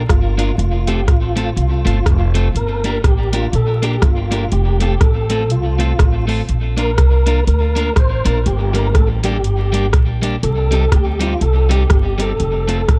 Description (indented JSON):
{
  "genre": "ska",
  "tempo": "122 BPM",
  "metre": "4/4",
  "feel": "swing 59% on 8ths",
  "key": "unclear",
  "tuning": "A4 = 440 Hz",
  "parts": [
    { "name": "electric guitar at the edge of break-up", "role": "accompaniment", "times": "0.0-12.8 s", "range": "G3 to Bb4", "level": "-26 LUFS", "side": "equal", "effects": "tape echo" },
    { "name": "upright bass", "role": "bass", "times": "0.0-13.0 s", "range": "F1 to D2", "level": "-19 LUFS", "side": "equal", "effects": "none" },
    { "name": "mellow tonewheel organ", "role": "melody", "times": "0.1-13.0 s", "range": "F4 to C5", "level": "-25 LUFS", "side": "equal", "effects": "chorus vibrato, fast rotary speaker, tape echo, plate reverb" },
    { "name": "soft vintage rhythm box", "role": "drums", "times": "0.1-13.0 s", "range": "hi-hat, kick drum, rim click", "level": "-17 LUFS", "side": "equal", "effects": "none" }
  ],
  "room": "light reverb",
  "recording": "vinyl crackle",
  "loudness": "-16 LUFS",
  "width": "mono",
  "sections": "0.0-13.0 A section",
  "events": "none",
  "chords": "0.0 Bb; 0.6 F; 2.6 Gm; 4.5 F; 6.5 Bb; 8.5 Gm; 10.4 Cm; 12.4 F"
}